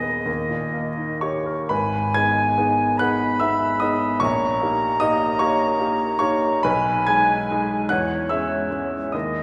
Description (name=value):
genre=classical, romantic duo for flute and grand piano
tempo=48 BPM (dotted quarters)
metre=6/8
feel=uneven beats, rubato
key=G# minor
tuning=A4 = 440 Hz
part: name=concert flute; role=melody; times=0.0-9.4 s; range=C#5 to B5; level=-26 LUFS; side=equal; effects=none
part: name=clear grand piano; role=accompaniment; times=0.0-9.4 s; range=D#1 to G#6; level=-24 LUFS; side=equal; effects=none
room=wet concert hall reverb, RT60 2.1 s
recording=heard from further back in the room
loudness=-21 LUFS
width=mono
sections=0.0-1.7 A section; 1.7-9.4 B section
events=none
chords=0.3 D#; 1.7 G#m; 4.2 D#7/A#; 6.6 G#m/B; 7.9 C#m/E